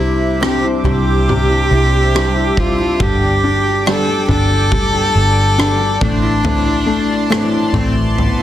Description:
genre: pop ballad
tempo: 70 BPM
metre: 4/4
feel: straight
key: C major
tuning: A4 = 438 Hz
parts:
  - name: warm cello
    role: melody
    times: 0.0-8.4 s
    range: B3 to A4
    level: -17 LUFS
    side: equal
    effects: none
  - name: felt-muted upright piano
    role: accompaniment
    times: 0.0-8.4 s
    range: C3 to D4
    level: -20 LUFS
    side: left 4 dB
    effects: none
  - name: chorused pulse-width pad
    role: sustained chords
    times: 0.0-8.4 s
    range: C5 to D6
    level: -24 LUFS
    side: left 1 dB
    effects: none
  - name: flamenco guitar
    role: arpeggios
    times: 0.0-8.4 s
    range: G2 to G4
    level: -22 LUFS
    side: right 3 dB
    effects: none
  - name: vintage muted fingered electric bass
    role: bass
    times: 0.0-8.4 s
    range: F1 to C2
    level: -18 LUFS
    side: equal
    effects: none
  - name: loose indie drum kit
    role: drums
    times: 0.4-8.4 s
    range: kick drum, rim click, toms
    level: -20 LUFS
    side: equal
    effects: none
room: light reverb, small room reverb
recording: dense, heavily limited modern master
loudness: -12 LUFS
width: side -12 dB against mid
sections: 0.0-8.4 A section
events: none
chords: 0.0 Cadd9; 3.0 G; 6.0 Amadd9

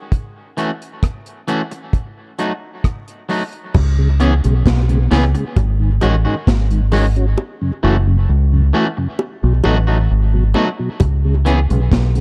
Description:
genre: dub reggae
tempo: 66 BPM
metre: 4/4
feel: straight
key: C# minor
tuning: A4 = 437 Hz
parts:
  - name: deep reggae drum kit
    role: drums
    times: 0.1-12.2 s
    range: crash cymbal, hi-hat, kick drum, rim click, snare drum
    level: -20 LUFS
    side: equal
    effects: none
  - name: electric guitar at the edge of break-up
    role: accompaniment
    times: 0.6-11.6 s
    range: D#3 to G#4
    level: -24 LUFS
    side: equal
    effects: dub echo
  - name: bongos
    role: percussion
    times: 3.7-11.2 s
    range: none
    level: -27 LUFS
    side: equal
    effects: dub echo
  - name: deep dub fingered electric bass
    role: bass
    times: 3.8-12.2 s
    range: F#1 to C#2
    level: -16 LUFS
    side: equal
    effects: none
  - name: mellow tonewheel organ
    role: accompaniment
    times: 4.0-12.2 s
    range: F#2 to F#4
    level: -24 LUFS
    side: equal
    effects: chorus vibrato, slow rotary speaker
room: small room ambience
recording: dark, warm production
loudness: -17 LUFS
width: mono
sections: 0.0-3.8 A section; 3.8-12.2 B section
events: part muted 7.4-11.0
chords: 0.1 F#m7; 1.9 F#m6; 3.8 C#m7; 5.6 G#7sus4; 7.4 F#m7; 9.2 B7; 11.0 C#m7

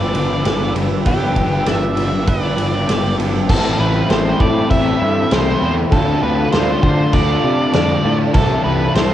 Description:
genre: rock, shoegaze and dream pop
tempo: 99 BPM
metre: 4/4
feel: straight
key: A minor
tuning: A4 = 440 Hz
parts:
  - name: octave-fuzz lead guitar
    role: melody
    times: 0.0-9.1 s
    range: G4 to E5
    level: -22 LUFS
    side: equal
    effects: distortion, cassette tape, tape echo
  - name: warbly tape-like pad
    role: sustained chords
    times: 0.0-9.1 s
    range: C4 to E6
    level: -24 LUFS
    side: equal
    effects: chorus, built-in reverb, cassette tape
  - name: twangy electric guitar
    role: arpeggios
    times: 0.0-3.9 s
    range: G4 to D5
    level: -31 LUFS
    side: right 8 dB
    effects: wide subtle chorus, cassette tape, tape echo
  - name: biting overdriven guitar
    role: riff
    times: 0.0-9.1 s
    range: G2 to F4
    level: -24 LUFS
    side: right 8 dB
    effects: reverse reverb, cassette tape
  - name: overdriven semi-hollow guitar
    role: riff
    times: 0.0-9.1 s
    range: G2 to F4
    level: -20 LUFS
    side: left 6 dB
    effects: ensemble chorus, cassette tape
  - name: fuzz picked electric bass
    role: bass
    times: 0.0-9.1 s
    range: G1 to D3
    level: -20 LUFS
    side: equal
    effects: overdrive
  - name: loose indie drum kit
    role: drums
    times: 0.1-9.1 s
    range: crash cymbal, kick drum, ride cymbal, snare drum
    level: -20 LUFS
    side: equal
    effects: cassette tape
room: light reverb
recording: home recording on cassette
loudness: -14 LUFS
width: side -12 dB against mid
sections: 0.0-3.5 A section; 3.5-9.1 B section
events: none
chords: 0.0 G7; 3.5 Am9; 5.9 Dm7; 8.3 C6

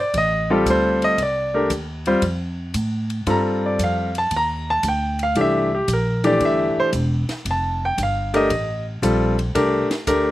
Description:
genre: jazz piano trio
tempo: 115 BPM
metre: 4/4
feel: swing 68% on 8ths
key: F mixolydian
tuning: A4 = 440 Hz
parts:
  - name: clear concert grand piano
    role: melody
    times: 0.0-10.3 s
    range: E3 to Bb5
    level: -18 LUFS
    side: equal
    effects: slapback echo
  - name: upright bass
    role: bass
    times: 0.1-10.3 s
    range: E1 to A2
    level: -24 LUFS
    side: equal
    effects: none
  - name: compact cocktail drum kit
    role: drums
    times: 0.1-10.2 s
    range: hi-hat, kick drum, ride cymbal, snare drum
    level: -32 LUFS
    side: equal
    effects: none
room: little or no reverb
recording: recorded outdoors, with no room sound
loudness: -18 LUFS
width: side -15 dB against mid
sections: 0.0-10.3 A section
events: grand piano solo 0.0-10.3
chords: 0.0 F9; 3.3 G5; 5.4 C9; 7.5 Fadd9

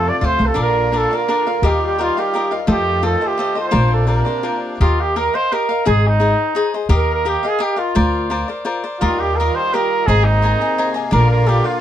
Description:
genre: mexican folk, mariachi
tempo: 171 BPM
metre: 3/4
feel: rubato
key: Bb major, Eb major from 4.8 s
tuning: A4 = 442 Hz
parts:
  - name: mellow trumpet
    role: melody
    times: 0.0-11.8 s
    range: Eb4 to D5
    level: -18 LUFS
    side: right 2 dB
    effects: none
  - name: cavaquinho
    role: accompaniment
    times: 0.0-11.8 s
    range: D4 to Bb5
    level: -21 LUFS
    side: left 4 dB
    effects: none
  - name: musette accordion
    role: sustained chords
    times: 0.0-4.8, 9.0-11.8 s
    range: C3 to Ab4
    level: -26 LUFS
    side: equal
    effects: none
  - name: upright bass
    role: bass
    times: 0.0-11.6 s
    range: Ab1 to F2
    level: -17 LUFS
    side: equal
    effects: none
room: light reverb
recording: close, detailed microphones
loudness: -14 LUFS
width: side -11 dB against mid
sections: 0.0-4.8 A section; 4.8-11.8 B section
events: none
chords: 0.0 F; 0.6 Bb; 1.6 Ebadd9; 2.7 F7; 3.7 Bbadd9; 4.8 Ebadd9; 5.9 Ab; 6.9 Ebadd9; 8.0 Bbadd9/D; 9.0 Ebadd9; 10.1 Abadd9; 11.1 Bb

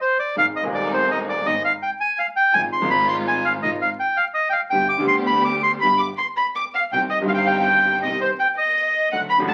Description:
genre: tango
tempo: 110 BPM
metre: 4/4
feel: rubato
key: C harmonic minor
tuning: A4 = 440 Hz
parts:
  - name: bandoneon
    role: melody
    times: 0.0-9.5 s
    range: C5 to D6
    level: -21 LUFS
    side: equal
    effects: none
  - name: clear upright piano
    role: accompaniment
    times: 0.4-9.5 s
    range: Eb1 to Ab4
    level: -28 LUFS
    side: equal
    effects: none
  - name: rich studio string section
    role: stabs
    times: 0.4-9.5 s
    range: Ab3 to G4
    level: -34 LUFS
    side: equal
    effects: none
  - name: clear double bass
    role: bass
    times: 0.4-9.5 s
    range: G1 to Eb2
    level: -36 LUFS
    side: equal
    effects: none
  - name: warm chamber violin section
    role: second line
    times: 5.8-9.5 s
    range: C5 to D6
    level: -28 LUFS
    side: equal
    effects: none
room: wet club reverb, RT60 0.5 s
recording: very old 78 rpm record, vinyl crackle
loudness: -20 LUFS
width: mono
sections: 0.0-9.5 A section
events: none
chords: 0.4 Ab; 2.5 Fm7/Ab; 4.7 G; 6.9 Cm

